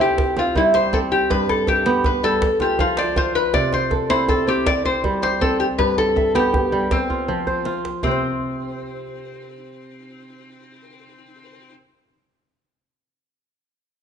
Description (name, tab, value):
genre	west african traditional, West African string and xylophone music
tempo	107 BPM (dotted quarters)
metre	12/8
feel	straight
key	C major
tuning	A4 = 440 Hz
part	metal-body resonator slide guitar	melody	0.0-11.7 s	C4 to D5	-20 LUFS	left 2 dB	none
part	kora	arpeggios	0.0-11.8 s	G2 to E5	-22 LUFS	right 2 dB	none
part	djembe	percussion	0.2-8.2 s	none	-25 LUFS	right 1 dB	none
room	moderate recital hall reverb, RT60 1.4 s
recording	nothing above 10.6 kHz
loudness	-17 LUFS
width	side -7 dB against mid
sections	0.0-8.0 A section; 8.0-10.3 B section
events	drum fill 7.1-8.0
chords	0.0 C; 1.3 G; 2.4 F5; 3.5 C; 5.8 G; 6.9 F5; 8.0 N.C.